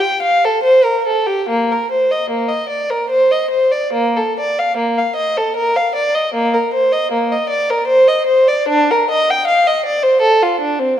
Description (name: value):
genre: classical, baroque-style suite movement for unaccompanied violin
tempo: 75 BPM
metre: 3/4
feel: uneven beats, rubato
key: Bb major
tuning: A4 = 440 Hz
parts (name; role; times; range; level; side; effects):
- rich violin; solo; 0.0-11.0 s; Bb3 to G5; -13 LUFS; equal; none
room: moderate concert hall reverb, RT60 1.9 s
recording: none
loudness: -13 LUFS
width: side -10 dB against mid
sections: 0.0-1.5 A section; 1.5-11.0 A section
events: none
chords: none